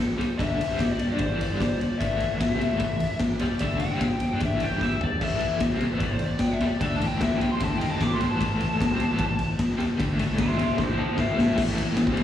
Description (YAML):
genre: garage rock duo or trio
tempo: 150 BPM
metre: 4/4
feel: straight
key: A minor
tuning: A4 = 440 Hz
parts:
  - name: raw garage drum kit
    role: drums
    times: 0.0-12.2 s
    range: crash cymbal, kick drum, ride cymbal, snare drum, toms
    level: -26 LUFS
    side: left 1 dB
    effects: none
  - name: crunchy overdriven guitar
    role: riff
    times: 0.2-12.2 s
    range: G2 to E4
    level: -28 LUFS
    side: left 1 dB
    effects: tremolo, slapback echo
  - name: growling picked electric bass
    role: bass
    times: 0.2-12.2 s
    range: G1 to A2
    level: -30 LUFS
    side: left 1 dB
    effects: overdrive
  - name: fuzz lead guitar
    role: melody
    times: 0.4-11.6 s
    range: C5 to D6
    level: -30 LUFS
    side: left 3 dB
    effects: distortion, slapback echo
room: light reverb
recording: live gig heard through the venue's PA, recital hall reverb, small room reverb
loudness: -22 LUFS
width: side -10 dB against mid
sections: 0.0-11.6 A section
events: lead electric guitar solo 0.0-11.6; drum fill 4.8-5.2, 10.8-11.6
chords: 0.0 Am